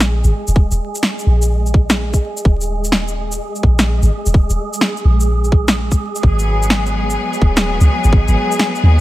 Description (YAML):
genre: future garage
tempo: 127 BPM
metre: 4/4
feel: swing 67% on 16ths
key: unclear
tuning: A4 = 437 Hz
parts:
  - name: soft 808-style bass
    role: bass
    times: 0.0-9.0 s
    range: D#1 to D#2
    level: -15 LUFS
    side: equal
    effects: none
  - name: electronic snare drum and shaker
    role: drums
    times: 0.0-8.8 s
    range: none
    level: -18 LUFS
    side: equal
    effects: none
  - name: wind-like tuned noise texture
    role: texture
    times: 0.0-9.0 s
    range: G#3 to G#4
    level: -24 LUFS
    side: right 2 dB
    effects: built-in reverb
  - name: electronic kick drum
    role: drums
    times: 0.6-8.2 s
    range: none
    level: -12 LUFS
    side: equal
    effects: none
  - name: bright studio string section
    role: sustained chords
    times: 6.2-9.0 s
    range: F#3 to G#4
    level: -19 LUFS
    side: left 3 dB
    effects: sidechain pumping
room: little or no reverb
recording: vinyl crackle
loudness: -13 LUFS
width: side -16 dB against mid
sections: 0.0-9.0 A section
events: none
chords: 0.0 D#5; 6.2 G#m7